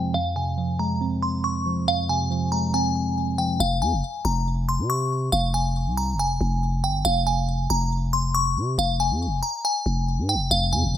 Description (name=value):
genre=hip hop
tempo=139 BPM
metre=4/4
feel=half-time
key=F minor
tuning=A4 = 440 Hz
part: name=delicate synth tine bell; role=melody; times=0.0-11.0 s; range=F5 to Db6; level=-24 LUFS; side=left 1 dB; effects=chorus, phaser, low-pass filter, ping-pong delay
part: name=mellow tine electric piano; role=accompaniment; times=0.0-3.6, 10.5-11.0 s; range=F2 to C4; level=-24 LUFS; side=right 1 dB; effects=slow stereo tremolo, low-pass filter
part: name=growling 808-style bass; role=bass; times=3.6-10.9 s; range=F1 to C3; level=-24 LUFS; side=equal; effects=none
room=digital ambience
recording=none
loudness=-21 LUFS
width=side -10 dB against mid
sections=0.0-3.6 A section; 3.6-11.0 B section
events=none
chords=0.0 Fm